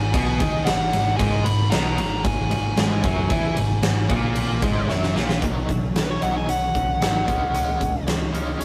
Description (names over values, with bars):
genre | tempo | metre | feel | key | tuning
quiet-loud alternative rock | 114 BPM | 4/4 | straight | G# minor | A4 = 440 Hz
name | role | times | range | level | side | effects
fuzz lead guitar | melody | 0.0-8.0 s | B4 to B5 | -29 LUFS | equal | distortion
biting overdriven guitar | riff | 0.0-8.6 s | F#2 to E4 | -33 LUFS | equal | tremolo
thick fuzz guitar | riff | 0.0-5.4 s | F#2 to E4 | -28 LUFS | equal | distortion
overdriven picked electric bass | bass | 0.0-8.6 s | F#1 to E2 | -29 LUFS | equal | none
huge arena drum kit | drums | 0.1-8.6 s | hi-hat, kick drum, ride cymbal, snare drum | -26 LUFS | equal | none
twelve-string electric guitar | arpeggios | 5.4-8.6 s | B2 to C#4 | -34 LUFS | equal | none
room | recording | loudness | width
moderate small room ambience, RT60 0.5 s | rough rehearsal-room recording, tube saturation | -22 LUFS | mono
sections
0.0-5.4 A section; 5.4-8.6 B section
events
drum fill 4.9-5.4; lead electric guitar solo 5.4-8.6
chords
0.0 G#m; 5.4 Badd9; 7.3 C#5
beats
0.14 0.67 | 1.20 1.73 2.25 2.78 | 3.31 3.84 4.37 4.89 | 5.42 5.95 6.48 7.01 | 7.54 8.07 8.60